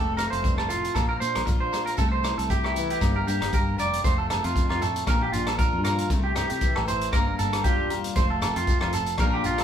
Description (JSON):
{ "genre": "highlife guitar band", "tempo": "117 BPM", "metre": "4/4", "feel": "swing 55% on 16ths", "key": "F major", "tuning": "A4 = 440 Hz", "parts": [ { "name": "picked steel-string acoustic guitar", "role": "accompaniment", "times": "0.0-9.6 s", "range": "F2 to A4", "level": "-31 LUFS", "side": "left 4 dB", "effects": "none" }, { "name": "electric guitar through a small old amp", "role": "arpeggios", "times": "0.0-9.6 s", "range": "E4 to D5", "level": "-27 LUFS", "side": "right 4 dB", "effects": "none" }, { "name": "fingered electric bass", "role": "bass", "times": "0.0-9.6 s", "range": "E1 to C3", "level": "-31 LUFS", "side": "equal", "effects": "none" }, { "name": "vintage drum kit", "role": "drums", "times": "0.2-9.6 s", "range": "hi-hat, kick drum, rim click", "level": "-26 LUFS", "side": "equal", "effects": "none" }, { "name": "agogo bells", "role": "percussion", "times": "0.2-9.6 s", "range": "none", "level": "-36 LUFS", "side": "left 8 dB", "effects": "none" }, { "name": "shekere", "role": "percussion", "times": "0.2-9.6 s", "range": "none", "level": "-37 LUFS", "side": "right 2 dB", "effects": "none" } ], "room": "moderate stone room reverb, RT60 0.9 s", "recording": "band playing live in one room", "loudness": "-22 LUFS", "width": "side -9 dB against mid", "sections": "0.0-4.0 A section; 4.0-9.6 B section", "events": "none", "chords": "0.0 F; 1.0 Bb; 2.0 C6; 3.0 Gm; 4.0 F; 5.1 Bb; 6.1 C6; 7.1 Gm; 8.2 F" }